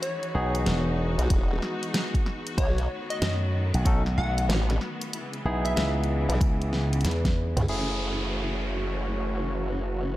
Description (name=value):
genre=glitch hop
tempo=94 BPM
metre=4/4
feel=swing 64% on 16ths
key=F# dorian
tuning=A4 = 439 Hz
part: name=plucky unison lead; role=melody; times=0.0-5.9 s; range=C#5 to F#5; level=-35 LUFS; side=equal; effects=dub echo
part: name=clear symphonic string section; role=sustained chords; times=0.0-10.2 s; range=C#3 to F#4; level=-35 LUFS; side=left 1 dB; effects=sidechain pumping, low-pass filter
part: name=pop drum kit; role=drums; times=0.0-7.8 s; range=crash cymbal, hi-hat, snare drum, toms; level=-31 LUFS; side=equal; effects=studio reverb
part: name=barky tine electric piano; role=stabs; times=0.3-10.2 s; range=A3 to A4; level=-33 LUFS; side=equal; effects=sidechain pumping, low-pass filter, dub echo
part: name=slap bass with an envelope filter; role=bass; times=0.3-7.5 s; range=E1 to F#2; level=-26 LUFS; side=equal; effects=none
part: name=formant-sweep wobble bass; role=bass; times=1.2-10.2 s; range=E1 to C#2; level=-28 LUFS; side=equal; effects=chorus
part: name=electronic kick drum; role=drums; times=1.3-7.3 s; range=none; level=-24 LUFS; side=equal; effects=studio reverb
part: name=downlifter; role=sound effects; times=7.7-10.2 s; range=none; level=-35 LUFS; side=equal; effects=none
part: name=airy breathy pad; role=texture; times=7.7-10.2 s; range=F#4 to C#5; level=-37 LUFS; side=right 2 dB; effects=chorus, sidechain pumping
room=light reverb, digital ambience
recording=dark, warm production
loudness=-24 LUFS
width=side -15 dB against mid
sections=0.0-7.7 A section; 7.7-10.2 B section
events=filter sweep on tine electric piano 0.0-7.7, 7.7-10.2; drum fill 7.0-7.7; filter sweep on string section 7.7-10.2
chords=0.0 Emaj9; 2.6 B7; 5.1 C#m7; 7.7 F#m7